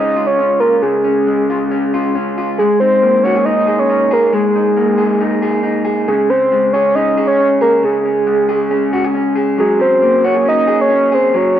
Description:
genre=jangly indie pop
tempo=137 BPM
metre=4/4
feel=straight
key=Db major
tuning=A4 = 440 Hz
part: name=soft octave-layered synth lead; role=melody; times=0.0-11.6 s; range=Ab4 to Eb5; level=-13 LUFS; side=right 1 dB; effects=chorus, tape echo
part: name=electric guitar through a small old amp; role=arpeggios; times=0.0-11.6 s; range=Db3 to Ab4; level=-16 LUFS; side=left 1 dB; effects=spring reverb
room=light reverb, digital ambience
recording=none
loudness=-11 LUFS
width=side -10 dB against mid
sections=0.0-11.6 A section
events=none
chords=0.0 Db; 2.6 Absus2; 6.1 Db5; 9.6 Gbadd9

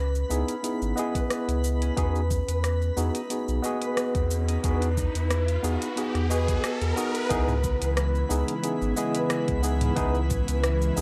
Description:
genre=sunset chillout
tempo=90 BPM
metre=4/4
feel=swing 54% on 16ths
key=unclear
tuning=A4 = 440 Hz
part: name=concert harp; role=arpeggios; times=0.0-11.0 s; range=C#4 to E5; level=-35 LUFS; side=equal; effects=analog delay
part: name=warm sub bass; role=bass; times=0.0-11.0 s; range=G#1 to E2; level=-28 LUFS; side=equal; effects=transformer saturation
part: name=twinkling granular texture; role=texture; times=0.0-11.0 s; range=B4 to B5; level=-44 LUFS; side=equal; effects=built-in reverb
part: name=smooth R&B drum kit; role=drums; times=0.2-11.0 s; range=hi-hat, rim click, shaker, toms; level=-36 LUFS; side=equal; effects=none
part: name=tine electric piano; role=accompaniment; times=0.3-11.0 s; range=B3 to D#5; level=-32 LUFS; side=equal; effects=analog delay
part: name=electronic kick drum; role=drums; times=1.2-10.4 s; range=none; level=-32 LUFS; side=equal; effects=none
part: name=riser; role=sound effects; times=4.3-7.3 s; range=none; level=-37 LUFS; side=equal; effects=none
part: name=airy breathy pad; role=sustained chords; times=7.3-11.0 s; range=C#3 to E4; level=-34 LUFS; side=equal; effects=chorus
room=light reverb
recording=dry, gritty hardware recording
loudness=-26 LUFS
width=mono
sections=0.0-7.3 A section; 7.3-11.0 B section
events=riser 4.3-7.3; kick drops out 6.6-7.3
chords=0.0 C#m7; 2.0 Emaj7; 7.3 C#m7

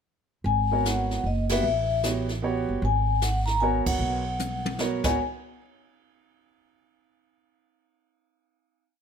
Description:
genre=jazz, small-group swing and bop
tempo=152 BPM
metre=3/4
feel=swing 64% on 8ths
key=G# minor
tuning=A4 = 440 Hz
part: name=upright bass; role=bass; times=0.4-5.2 s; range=F#1 to B1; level=-28 LUFS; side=right 1 dB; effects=none
part: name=vibraphone with soft mallets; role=melody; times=0.5-5.2 s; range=D#5 to A#5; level=-27 LUFS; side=left 5 dB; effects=none
part: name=jazz brush drum kit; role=drums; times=0.5-5.1 s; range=brushed snare drum, crash cymbal, hi-hat, kick drum, ride cymbal, snare drum, toms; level=-32 LUFS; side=equal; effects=none
part: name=warm grand piano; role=accompaniment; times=0.7-5.2 s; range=B3 to C#5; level=-29 LUFS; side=right 5 dB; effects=none
room=light reverb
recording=none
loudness=-23 LUFS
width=side -7 dB against mid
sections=0.5-5.2 A section; 5.2-6.4 final hit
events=band accent 1.4, 3.8; drum fill 4.4-5.2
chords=0.5 G#m11; 1.6 A13; 2.8 G#m11; 5.2 N.C.

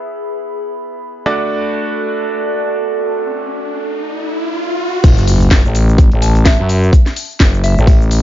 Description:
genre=bass house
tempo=127 BPM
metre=4/4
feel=swing 56% on 16ths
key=F# minor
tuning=A4 = 441 Hz
part: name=bright grand piano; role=stabs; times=0.0-5.0 s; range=A3 to E5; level=-22 LUFS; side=right 1 dB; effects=vintage 12-bit sampler grit, sidechain pumping, dub echo
part: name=warbly tape-like pad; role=texture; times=0.0-4.6 s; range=F#4 to B5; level=-21 LUFS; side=right 3 dB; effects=chorus, built-in reverb, sidechain pumping
part: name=riser and sub drop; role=sound effects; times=3.0-6.9 s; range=none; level=-21 LUFS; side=equal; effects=none
part: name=growling FM bass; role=bass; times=5.0-8.2 s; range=F#1 to F#2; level=-12 LUFS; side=equal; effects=overdrive, sidechain pumping
part: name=breakbeat sampler-style drum kit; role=drums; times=5.0-8.2 s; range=hi-hat, snare drum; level=-32 LUFS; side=equal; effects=none
part: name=electronic kick drum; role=drums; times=5.0-8.0 s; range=none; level=-9 LUFS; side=equal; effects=studio ambience
part: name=garage drum kit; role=drums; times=5.0-8.2 s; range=cabasa, crash cymbal, hi-hat, snare drum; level=-20 LUFS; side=equal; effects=studio ambience
part: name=soft synth bell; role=melody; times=6.2-7.8 s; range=E5 to A5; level=-23 LUFS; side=left 2 dB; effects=chorus, phaser, dub echo
room=little or no reverb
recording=dark, warm production, nothing above 7.5 kHz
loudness=-12 LUFS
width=side -13 dB against mid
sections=0.0-5.0 A section; 5.0-8.2 B section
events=riser 3.0-5.0; drop 5.0-8.2; impact 5.0-6.9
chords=0.0 E; 1.3 D; 5.0 F#m

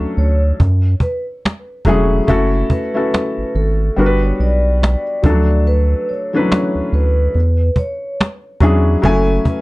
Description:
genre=lo-fi hip hop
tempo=71 BPM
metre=4/4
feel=swing 59% on 16ths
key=F# minor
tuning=A4 = 441 Hz
part: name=felt-muted upright piano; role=accompaniment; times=0.0-9.6 s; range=E3 to G#5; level=-17 LUFS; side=left 2 dB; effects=cassette tape
part: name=round analog bass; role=bass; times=0.0-9.4 s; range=E1 to F#2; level=-14 LUFS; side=equal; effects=none
part: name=vibraphone with soft mallets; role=melody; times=0.2-9.6 s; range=A4 to D5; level=-22 LUFS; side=equal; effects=none
part: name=cajon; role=drums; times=0.2-9.6 s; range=none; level=-17 LUFS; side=equal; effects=vintage 12-bit sampler grit
room=light reverb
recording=dark, warm production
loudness=-13 LUFS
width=side -20 dB against mid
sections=0.0-2.3 A section; 2.3-9.6 B section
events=none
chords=0.0 Dmaj7; 0.6 F#m9; 4.0 Gmaj7; 5.2 Dmaj7; 7.3 E13; 9.0 F#m9

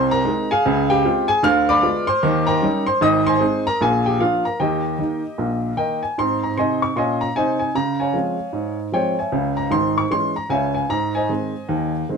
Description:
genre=jazz, stride piano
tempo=152 BPM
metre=4/4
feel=swing 62% on 8ths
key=Ab major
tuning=A4 = 444 Hz
part: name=warm upright piano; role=solo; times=0.0-12.2 s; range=Ab1 to F6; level=-17 LUFS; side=equal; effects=none
room=moderate studio reverb, RT60 0.8 s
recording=none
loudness=-17 LUFS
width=side -5 dB against mid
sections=0.0-6.2 A section; 6.2-12.2 B section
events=none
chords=0.0 Ab/C; 0.6 Dbmaj7; 1.4 Ddim7; 2.2 Eb7; 3.0 Ab; 3.8 Bb7; 4.6 Eb; 6.2 Ab; 7.7 Dbmaj7; 9.3 Dbm; 10.9 Ab

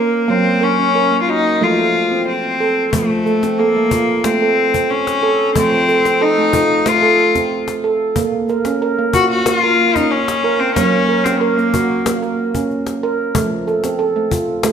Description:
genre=world meditative, meditative tuned percussion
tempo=92 BPM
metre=4/4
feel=straight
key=F phrygian dominant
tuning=A4 = 439 Hz
part: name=rich cello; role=melody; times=0.0-12.4 s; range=A3 to Gb4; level=-15 LUFS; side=left 4 dB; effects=tape echo
part: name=handpan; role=arpeggios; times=0.0-14.7 s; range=F3 to Bb4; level=-16 LUFS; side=right 4 dB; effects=tape echo
part: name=cajon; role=percussion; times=2.9-14.7 s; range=none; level=-23 LUFS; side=left 4 dB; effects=none
room=wet recital hall reverb, RT60 1.5 s, studio reverb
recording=none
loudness=-13 LUFS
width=side -7 dB against mid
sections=0.0-2.9 A section; 2.9-14.7 B section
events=none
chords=0.3 Gb; 1.6 F; 8.2 Bbm; 10.8 Gb; 13.3 F

